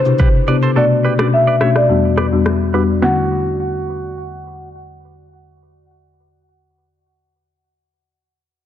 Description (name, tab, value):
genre	afrobeats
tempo	106 BPM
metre	4/4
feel	straight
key	D major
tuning	A4 = 443 Hz
part	marimba with medium mallets	melody	0.0-6.8 s	C5 to F#5	-19 LUFS	equal	digital delay
part	folk marimba with medium mallets	accompaniment	0.1-6.8 s	E2 to G4	-16 LUFS	left 3 dB	none
part	afro-pop drum kit	drums	0.1-3.2 s	kick drum, rim click, shaker, snare drum	-20 LUFS	equal	soft clipping on snare
part	direct-recorded clean electric guitar	riff	0.2-4.7 s	F#4 to E5	-24 LUFS	right 6 dB	digital delay
room	moderate lush hall reverb, RT60 2.2 s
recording	dense, heavily limited modern master, low-pass filter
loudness	-12 LUFS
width	side -10 dB against mid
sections	0.0-3.0 A section; 3.0-5.3 B section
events	filter sweep 0.0-3.0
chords	0.0 Cmaj7; 0.8 Bm7; 1.9 Em7; 3.0 Dmaj7